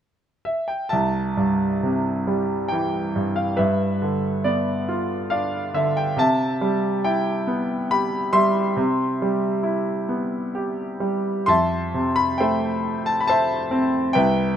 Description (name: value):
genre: classical, lyrical solo piano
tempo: 69 BPM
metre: 3/4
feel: rubato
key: C major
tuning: A4 = 440 Hz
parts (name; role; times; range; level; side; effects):
- bright concert grand piano; solo; 0.5-14.6 s; C2 to C6; -20 LUFS; equal; none
room: light reverb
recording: minimal, uncompressed stereo recording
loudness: -20 LUFS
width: side -9 dB against mid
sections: 0.9-11.5 A section; 11.5-14.6 B section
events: none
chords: 0.0 N.C.; 0.9 C; 3.6 G7; 6.2 Cmaj7; 11.5 Fmaj7